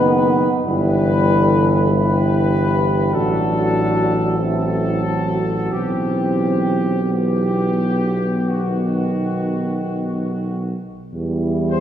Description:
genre	classical, hymn-like piece for brass band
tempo	42-51 BPM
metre	4/4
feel	rubato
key	E minor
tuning	A4 = 440 Hz
part	warm trumpet section	melody	0.0-11.8 s	F#4 to C5	-24 LUFS	left 4 dB	none
part	mellow French horn section	second line	0.0-10.5 s	D#4 to A4	-25 LUFS	right 4 dB	none
part	warm euphonium	accompaniment	0.0-11.8 s	G3 to E4	-24 LUFS	left 1 dB	none
part	warm euphonium	accompaniment	0.0-11.8 s	D#3 to G3	-24 LUFS	right 2 dB	none
part	warm tuba	bass	0.0-11.8 s	F#1 to E2	-20 LUFS	equal	none
room	wet concert hall reverb, RT60 2.5 s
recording	heard from further back in the room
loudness	-16 LUFS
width	side -10 dB against mid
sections	0.0-11.1 A section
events	none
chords	0.0 B/F#; 0.6 Em/G; 3.1 Am6; 5.7 Em/B; 8.5 B; 11.1 Em

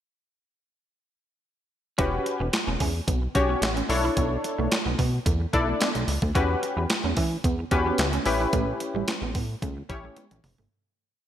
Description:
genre	early-eighties boogie funk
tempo	110 BPM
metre	4/4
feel	straight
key	E dorian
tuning	A4 = 444 Hz
part	funky polysynth comp	accompaniment	2.0-10.3 s	C#4 to D5	-27 LUFS	left 2 dB	chorus
part	semi-hollow electric guitar	riff	2.0-10.7 s	G3 to E4	-34 LUFS	right 5 dB	ensemble chorus
part	chorused synth bass	bass	2.0-10.7 s	E1 to E3	-28 LUFS	equal	none
part	clean 12-bit digital drum machine	drums	2.0-10.7 s	handclaps, hi-hat, kick drum, snare drum, toms	-27 LUFS	equal	gated reverb
room	moderate lush hall reverb, RT60 1.8 s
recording	bright 1980s-style digital production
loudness	-23 LUFS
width	side -10 dB against mid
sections	2.0-10.7 verse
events	fade-out 8.5-10.7; drum fill 10.2-10.7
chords	2.0 Em69; 3.9 Bm11; 6.4 Em69; 8.3 A9

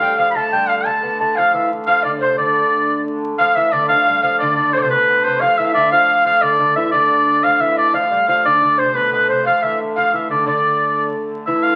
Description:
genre	medieval dance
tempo	119 BPM (dotted quarters)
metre	6/8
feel	straight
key	D dorian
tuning	A4 = 440 Hz
part	clear shawm	melody	0.0-11.8 s	B4 to B5	-18 LUFS	equal	none
part	breathy bright alto recorder	second line	0.0-11.1 s	B4 to A5	-22 LUFS	equal	none
part	lute	second line	0.0-11.8 s	B2 to B3	-28 LUFS	equal	none
part	dark hurdy-gurdy	drone	0.0-11.8 s	D3 to A3	-28 LUFS	equal	none
room	wet studio reverb, RT60 0.9 s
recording	very old 78 rpm record, vinyl crackle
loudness	-16 LUFS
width	mono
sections	0.0-3.4 A section; 3.4-11.5 A section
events	none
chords	none

